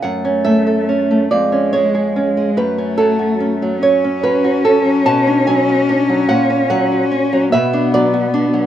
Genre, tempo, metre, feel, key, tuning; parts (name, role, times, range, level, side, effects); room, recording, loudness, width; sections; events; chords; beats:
romantic duo for cello and classical guitar; 48 BPM (dotted quarters); 6/8; rubato; F# minor; A4 = 440 Hz
dark cello; melody; 0.0-8.7 s; G#3 to C#4; -17 LUFS; left 4 dB; plate reverb
nylon-string guitar; accompaniment; 0.0-8.7 s; E#2 to A5; -14 LUFS; right 2 dB; plate reverb
wet studio reverb, RT60 0.6 s; rough home demo mix; -12 LUFS; side -11 dB against mid
0.0-8.7 A section
0.0 F#m; 1.3 C#/E#; 2.6 F#m; 5.1 Bm; 6.3 F#/A#; 7.5 Bm
| 0.04 1.31 | 2.58 3.84 | 5.07 6.30 | 7.54